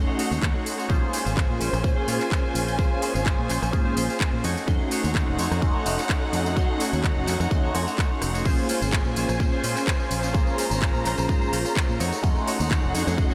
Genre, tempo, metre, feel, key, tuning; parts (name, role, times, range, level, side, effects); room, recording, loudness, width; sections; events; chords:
filtered disco house; 127 BPM; 4/4; swing 54% on 16ths; Bb minor; A4 = 438 Hz
funky polysynth comp; accompaniment; 0.0-13.3 s; A3 to C6; -32 LUFS; equal; chorus, phaser, sidechain pumping
dark studio string section; sustained chords; 0.0-13.3 s; Db4 to Bb5; -33 LUFS; equal; vintage 12-bit sampler grit, sidechain pumping
direct-recorded clean electric guitar; riff; 0.0-13.3 s; Ab3 to Db5; -35 LUFS; equal; sidechain pumping
fingered electric bass; bass; 0.0-13.3 s; F1 to Bb2; -30 LUFS; equal; sidechain pumping
house drum kit; drums; 0.2-13.3 s; crash cymbal, handclaps, hi-hat, rim click, tambourine; -34 LUFS; equal; sidechain pumping on perc, sidechain pumping on hats, sidechain pumping on cymbals
electronic kick drum; drums; 0.4-13.3 s; -26 LUFS; equal
tambourine; percussion; 8.5-13.3 s; -44 LUFS; equal; sidechain pumping on perc
moderate huge ambient reverb, RT60 7.5 s; dreamy mix soaked in reverb; -24 LUFS; mono
0.0-13.3 A section
0.0 F7b9b13 (rootless); 0.9 Bbm9; 4.4 F7b9b13; 8.5 Bbm9; 12.0 F7b9b13